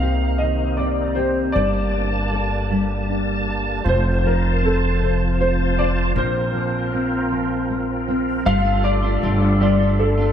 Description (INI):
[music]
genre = six-eight pop ballad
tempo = 52 BPM (dotted quarters)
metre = 6/8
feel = straight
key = G minor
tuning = A4 = 440 Hz
[part]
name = warm grand piano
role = melody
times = 0.0-10.3 s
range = A4 to F5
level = -24 LUFS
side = left 1 dB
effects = ensemble chorus, ping-pong delay
[part]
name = nylon-string guitar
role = accompaniment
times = 0.0-10.3 s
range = F2 to A4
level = -24 LUFS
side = equal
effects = double-tracked left and right
[part]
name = bright tonewheel organ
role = sustained chords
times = 0.0-10.3 s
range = C3 to A5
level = -26 LUFS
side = equal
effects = chorus vibrato, slow rotary speaker
[part]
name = upright bass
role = bass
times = 0.0-10.3 s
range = F1 to C2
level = -22 LUFS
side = equal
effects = none
[part]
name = twelve-string electric guitar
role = arpeggios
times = 8.5-10.3 s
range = G3 to F4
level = -28 LUFS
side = right 2 dB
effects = ping-pong delay
[sound]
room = moderate plate reverb, RT60 3.7 s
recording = dreamy mix soaked in reverb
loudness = -18 LUFS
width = side -9 dB against mid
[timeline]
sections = 0.0-8.5 A section; 8.5-10.3 B section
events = none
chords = 0.0 Cm7; 1.6 Gmadd9; 3.9 F; 6.2 Bbsus2; 8.5 Dm/G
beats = 0.40 | 1.56 2.71 | 3.86 5.01 | 6.16 7.31 | 8.46 9.61